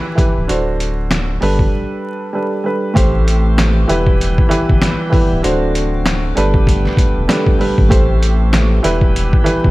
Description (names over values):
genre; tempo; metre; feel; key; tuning
hip hop, boom-bap hip-hop; 97 BPM; 4/4; swing 59% on 16ths; A minor; A4 = 440 Hz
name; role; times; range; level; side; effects
warm upright piano; accompaniment; 0.0-9.7 s; A2 to C5; -18 LUFS; right 1 dB; cassette tape, high-pass filter, low-pass filter
trip hop sampler-style drum kit; drums; 0.2-9.7 s; hi-hat, kick drum, snare drum; -15 LUFS; equal; overdrive
saturated sub bass; bass; 0.4-9.7 s; C#1 to A1; -16 LUFS; equal; none
tonewheel organ; sustained chords; 3.0-9.7 s; D3 to G4; -24 LUFS; left 2 dB; overdrive, slow rotary speaker, high-pass filter, low-pass filter
room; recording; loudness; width
digital ambience; vinyl crackle; -12 LUFS; side -19 dB against mid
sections
0.0-3.0 A section; 3.0-9.7 B section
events
break 1.7-3.0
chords
0.5 D7; 1.4 Gadd9; 3.0 Am7; 3.9 Em; 5.4 D7; 6.4 Gadd9; 7.9 Am7; 8.8 Em